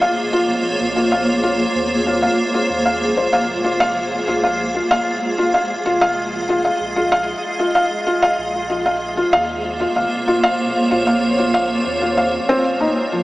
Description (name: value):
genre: IDM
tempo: 95 BPM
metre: 4/4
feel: straight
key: unclear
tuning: A4 = 443 Hz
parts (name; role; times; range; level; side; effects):
- granular cloud pad; sustained chords; 0.0-13.2 s; Bb3 to Eb5; -20 LUFS; right 1 dB; built-in reverb, wide subtle chorus
- felt-muted upright piano; arpeggios; 0.0-13.2 s; F3 to F5; -18 LUFS; left 1 dB; diffuse ambient delay
- warm sub bass; bass; 0.8-12.9 s; Eb1 to Eb2; -36 LUFS; equal; tube saturation
room: wet huge ambient reverb, RT60 8.0 s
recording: dreamy mix soaked in reverb, small speaker sound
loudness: -15 LUFS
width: side -18 dB against mid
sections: 0.0-13.2 A section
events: none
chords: 0.0 Bbm7; 3.3 Fm7; 8.4 Bbm7